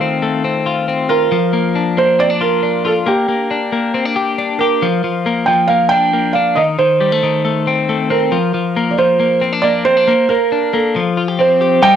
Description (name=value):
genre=indie pop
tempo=137 BPM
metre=4/4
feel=straight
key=Bb major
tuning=A4 = 440 Hz
part: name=felt-muted upright piano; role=melody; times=0.0-12.0 s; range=G4 to G5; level=-15 LUFS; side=right 4 dB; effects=slapback echo
part: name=twelve-string electric guitar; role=arpeggios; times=0.0-12.0 s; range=Eb3 to G4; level=-16 LUFS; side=left 5 dB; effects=slapback echo
room=wet small room reverb, RT60 0.5 s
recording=none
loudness=-12 LUFS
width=side -9 dB against mid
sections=0.0-11.8 A section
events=none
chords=0.0 F7; 1.3 Bb; 3.1 Gm; 4.8 Bb; 6.6 Am7b5/Eb; 8.3 Bb; 10.1 Bbmaj9; 11.0 Fadd9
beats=0.01 0.44 0.88 | 1.32 1.76 2.19 2.63 | 3.07 3.51 3.94 4.38 | 4.82 5.26 5.70 6.13 | 6.57 7.01 7.45 7.89 | 8.33 8.76 9.20 9.64 | 10.08 10.52 10.96 11.39 | 11.83